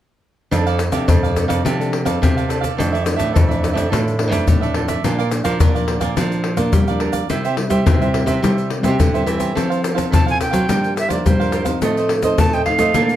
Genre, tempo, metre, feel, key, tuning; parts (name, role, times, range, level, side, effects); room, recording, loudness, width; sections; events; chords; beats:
samba and choro; 106 BPM; 4/4; straight; F major; A4 = 441 Hz
cavaquinho; accompaniment; 0.5-13.2 s; D4 to Bb5; -24 LUFS; right 7 dB
nylon-string guitar; accompaniment; 0.5-13.2 s; F2 to A4; -23 LUFS; left 2 dB
nylon-string guitar; bass; 0.5-13.2 s; F2 to Bb3; -20 LUFS; right 1 dB
egg shaker, surdo and pandeiro; percussion; 0.5-13.2 s; -19 LUFS; left 2 dB
breathy bright jazz flute; melody; 10.1-13.2 s; C5 to A5; -20 LUFS; right 2 dB; plate reverb
moderate studio reverb, RT60 0.5 s; dark, warm production; -15 LUFS; side -12 dB against mid
0.5-9.6 A section; 9.6-13.2 B section
0.5 F6; 2.8 Dmadd9/F; 5.0 Bb; 7.3 C; 9.6 Fmaj7; 10.7 C9sus4/G; 11.8 F7/A
| 0.52 1.08 1.65 2.21 | 2.78 3.35 3.91 4.48 | 5.04 5.61 6.17 6.74 | 7.30 7.87 8.43 9.00 | 9.56 10.13 10.69 11.26 | 11.82 12.38 12.95